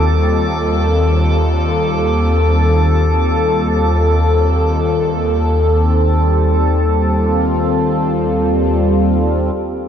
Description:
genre	ambient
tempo	free time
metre	none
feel	none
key	unclear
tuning	A4 = 440 Hz
part	warm analog pad	sustained chords	0.0-9.9 s	Eb2 to A4	-12 LUFS	equal	chorus
part	drifting glass-harmonics texture	texture	0.0-9.6 s	D6	-29 LUFS	right 2 dB	chorus, built-in reverb
room	wet lush hall reverb, RT60 2.5 s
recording	dark, warm production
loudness	-12 LUFS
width	side -8 dB against mid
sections	0.0-9.6 A section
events	fade-out on synth texture 0.0-9.6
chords	0.0 F13/Eb

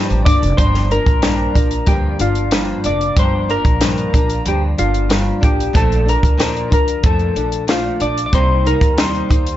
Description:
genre	indie pop, bedroom pop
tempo	93 BPM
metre	4/4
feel	straight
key	G minor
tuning	A4 = 441 Hz
part	soft electric-piano-like synth keys	melody	0.0-9.6 s	F4 to D5	-20 LUFS	left 1 dB	wide subtle chorus
part	flamenco guitar	accompaniment	0.0-9.6 s	G2 to Eb4	-21 LUFS	left 2 dB	ensemble chorus, warbly pitch drift
part	upright bass	bass	0.1-9.6 s	F1 to F2	-20 LUFS	equal	none
part	compact cocktail drum kit	drums	0.1-9.6 s	hi-hat, kick drum, snare drum	-16 LUFS	equal	vintage 12-bit sampler grit
room	light reverb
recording	nothing above 7.8 kHz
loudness	-13 LUFS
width	side -13 dB against mid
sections	0.6-9.6 A section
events	none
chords	0.0 Gm7; 5.7 Bbmaj7; 8.3 Cm7

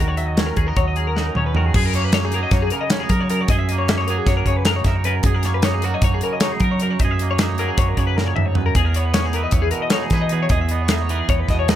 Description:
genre	math rock and midwest emo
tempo	307 BPM (eighths)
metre	9/8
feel	straight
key	unclear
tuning	A4 = 440 Hz
part	twangy electric guitar	accompaniment	0.0-11.8 s	E2 to B4	-25 LUFS	right 8 dB	none
part	twelve-string electric guitar	arpeggios	0.0-11.8 s	F#4 to E5	-24 LUFS	left 8 dB	lush chorus
part	hollow-body short-scale fingered electric bass	bass	0.0-11.8 s	D#2 to F#3	-21 LUFS	equal	none
part	modern studio drum kit	drums	0.2-11.8 s	crash cymbal, hi-hat, kick drum, snare drum, toms	-20 LUFS	equal	none
room	little or no reverb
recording	none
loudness	-17 LUFS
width	side -11 dB against mid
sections	0.0-1.7 A section; 1.7-11.8 B section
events	drum fill 1.2-1.7, 8.2-8.8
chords	0.0 D#m7; 1.7 F#69; 8.8 Emaj7

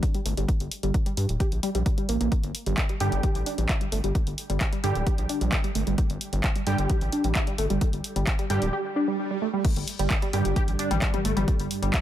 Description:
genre	driving peak-time techno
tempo	131 BPM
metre	4/4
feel	straight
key	unclear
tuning	A4 = 440 Hz
part	electronic kick drum	drums	0.0-12.0 s	none	-26 LUFS	equal	none
part	punchy analog drum machine	drums	0.0-12.0 s	crash cymbal, handclaps, hi-hat, toms	-32 LUFS	equal	sidechain pumping on hats, sidechain pumping on cymbals, sidechain pumping on toms
part	tight sequenced synth	riff	0.1-11.9 s	G3 to G4	-30 LUFS	equal	chorus, overdrive, sidechain pumping, ping-pong delay
part	gritty driven synth bass	bass	0.3-11.9 s	D1 to G2	-27 LUFS	equal	sidechain pumping
part	rave stab	stabs	3.0-12.0 s	D3 to G4	-32 LUFS	right 2 dB	chorus, built-in reverb, sidechain pumping, dub echo
part	swell	sound effects	8.9-9.6 s	none	-35 LUFS	right 3 dB	none
part	deep dark ambient pad	drone	10.0-12.0 s	G2 to G3	-34 LUFS	right 1 dB	chorus, built-in reverb, sidechain pumping
room	light reverb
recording	none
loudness	-23 LUFS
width	side -12 dB against mid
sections	0.0-9.6 A section; 9.6-12.0 B section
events	filter sweep on synth arpeggio sound 0.0-9.6; swell 8.9-9.6; drop 9.6-12.0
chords	0.0 G5

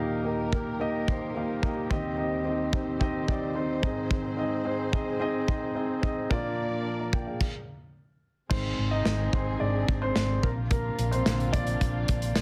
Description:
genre	piano-driven pop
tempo	109 BPM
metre	4/4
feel	straight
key	unclear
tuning	A4 = 439 Hz
part	dark concert grand piano	accompaniment	0.0-12.4 s	Eb2 to Bb5	-32 LUFS	equal	none
part	dark studio string section	sustained chords	0.0-12.4 s	C3 to D5	-41 LUFS	equal	none
part	modern studio drum kit	drums	0.5-12.4 s	crash cymbal, hi-hat, kick drum, snare drum	-32 LUFS	equal	none
part	hollow-body short-scale fingered electric bass	bass	8.5-12.4 s	Ab1 to Bb1	-32 LUFS	equal	none
room	moderate large studio reverb, RT60 0.8 s, small room ambience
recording	dense, heavily limited modern master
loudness	-28 LUFS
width	mono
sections	0.0-8.5 A section; 8.5-12.4 B section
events	stop 7.4-8.5; grand piano solo 8.5-12.4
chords	0.0 Eb; 1.9 Cm/Eb; 3.8 Ab; 6.3 Bb; 8.5 Ab; 10.4 Bbadd9

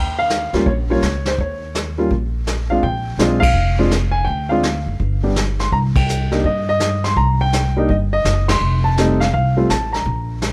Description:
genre	jazz piano trio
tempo	166 BPM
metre	4/4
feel	swing 65% on 8ths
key	unclear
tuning	A4 = 438 Hz
part	warm grand piano	melody	0.0-10.5 s	G3 to C6	-21 LUFS	equal	none
part	upright bass	bass	0.0-10.5 s	F1 to G2	-22 LUFS	equal	none
part	vintage brush drum kit	drums	0.3-10.5 s	brushed snare drum, hi-hat, kick drum, ride cymbal, snare drum	-25 LUFS	equal	none
room	light reverb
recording	none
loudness	-18 LUFS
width	mono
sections	0.0-10.5 A section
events	band accent 3.4, 5.9, 8.4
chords	0.0 Eb7(no3); 2.8 Bb7; 4.3 Dm; 5.0 N.C.; 5.7 Cm; 8.6 F

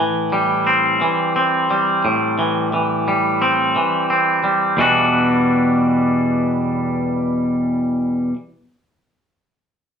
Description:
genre	rock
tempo	88 BPM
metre	4/4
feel	straight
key	E minor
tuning	A4 = 440 Hz
part	twangy electric guitar	arpeggios	0.0-8.4 s	E2 to F#4	-15 LUFS	equal	none
room	wet studio reverb, RT60 0.6 s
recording	band playing live in one room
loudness	-15 LUFS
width	side -7 dB against mid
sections	0.0-4.8 A section; 4.8-7.5 B section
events	none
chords	0.0 Am7; 4.8 Em9

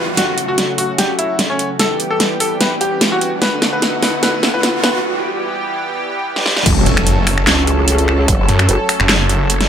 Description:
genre	heavy wobble dubstep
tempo	148 BPM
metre	4/4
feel	swing 53% on 16ths, half-time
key	F# phrygian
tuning	A4 = 440 Hz
part	bright concert grand piano	melody	0.0-5.0 s	C#4 to B4	-19 LUFS	left 2 dB	tape echo
part	lush unison pad	sustained chords	0.0-9.7 s	C#3 to A4	-21 LUFS	equal	chorus, sidechain pumping
part	riser and impact	sound effects	0.0-8.3 s	none	-23 LUFS	equal	none
part	dubstep drum kit	drums	0.2-9.7 s	crash cymbal, finger snaps, handclaps, hi-hat, snare drum	-16 LUFS	equal	none
part	growl bass	bass	6.7-8.8 s	F#1 to C#2	-15 LUFS	equal	chorus, overdrive
part	electronic kick drum	drums	6.7-8.4 s	none	-16 LUFS	equal	none
part	snarling distorted saw bass	bass	6.9-9.7 s	E1 to F#2	-15 LUFS	equal	distortion, overdrive
room	light reverb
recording	high-pass filter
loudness	-13 LUFS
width	side -8 dB against mid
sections	0.2-6.7 A section; 6.7-9.7 B section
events	riser 0.0, 0.2-5.0; build-up 0.2-6.7; drum fill 0.2-5.0, 6.4-6.7; break 5.0-6.7; drop 6.7-9.7; impact 6.7-8.3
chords	0.2 F#m; 1.8 Em; 3.4 Bm7; 5.0 Em; 6.7 F#m

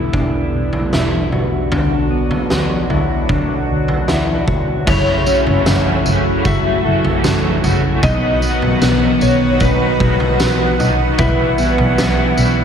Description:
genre	dream pop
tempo	76 BPM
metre	4/4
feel	straight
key	unclear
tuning	A4 = 440 Hz
part	phased analog pad	sustained chords	0.0-12.6 s	B2 to F#5	-19 LUFS	equal	phaser, chorus
part	mellow electric guitar	arpeggios	0.0-12.6 s	B3 to A4	-21 LUFS	left 2 dB	wide subtle chorus, ping-pong delay
part	dark double bass	bass	0.0-12.6 s	E1 to D2	-19 LUFS	equal	none
part	oversized low-tuned drum kit	drums	0.1-12.6 s	crash cymbal, kick drum, snare drum, tambourine, toms	-19 LUFS	equal	none
part	clean lap steel guitar	melody	4.9-12.6 s	B4 to E5	-21 LUFS	left 2 dB	analog chorus, ping-pong delay
part	raw garage guitar	accompaniment	4.9-12.6 s	F#2 to F#4	-23 LUFS	right 1 dB	overdrive, tremolo, analog chorus
room	moderate lush hall reverb, RT60 2.1 s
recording	dreamy mix soaked in reverb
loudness	-13 LUFS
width	side -8 dB against mid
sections	0.0-4.9 A section; 4.9-12.6 B section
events	none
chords	0.0 Em7; 1.7 Bm/D; 4.9 F#m7; 8.0 B; 11.2 Emadd9/B

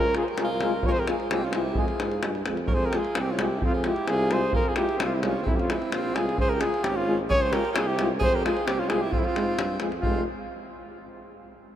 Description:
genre	balkan folk, Balkan brass band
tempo	131 BPM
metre	2/4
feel	straight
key	F harmonic minor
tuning	A4 = 439 Hz
part	mellow flugelhorn	melody	0.0-10.2 s	E4 to Db5	-28 LUFS	equal	none
part	breathy alto saxophone	second line	0.0-10.2 s	C4 to Bb4	-33 LUFS	right 3 dB	none
part	mellow French horn	accompaniment	0.0-10.2 s	F4	-33 LUFS	left 6 dB	none
part	warm trombone	accompaniment	0.0-10.2 s	Ab3	-35 LUFS	right 4 dB	none
part	warm tuba	bass	0.0-10.2 s	F1 to Ab2	-30 LUFS	equal	none
part	davul	percussion	0.1-10.2 s	none	-29 LUFS	equal	none
room	wet cathedral reverb, RT60 6.4 s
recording	in a vast, echoing space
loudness	-23 LUFS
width	side -10 dB against mid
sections	0.0-2.7 A section; 2.7-10.0 A section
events	none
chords	0.0 Db; 0.9 Fm; 6.4 Db; 8.2 Fm

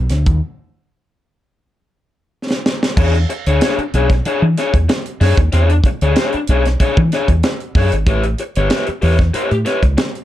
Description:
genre	funk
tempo	94 BPM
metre	4/4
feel	straight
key	unclear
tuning	A4 = 440 Hz
part	fingered electric bass	bass	0.0-10.0 s	G1 to E3	-14 LUFS	equal	none
part	tight funk drum kit	drums	0.1-10.2 s	crash cymbal, hi-hat, kick drum, snare drum	-17 LUFS	equal	none
part	raw garage guitar	accompaniment	3.0-10.0 s	D4 to C#5	-18 LUFS	left 3 dB	overdrive
room	little or no reverb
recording	dark, warm production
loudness	-13 LUFS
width	side -13 dB against mid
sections	0.0-3.0 A section; 3.0-10.2 B section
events	break 0.0-3.0; drum fill 2.3-3.0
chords	0.4 N.C.; 3.0 E13; 8.1 A9

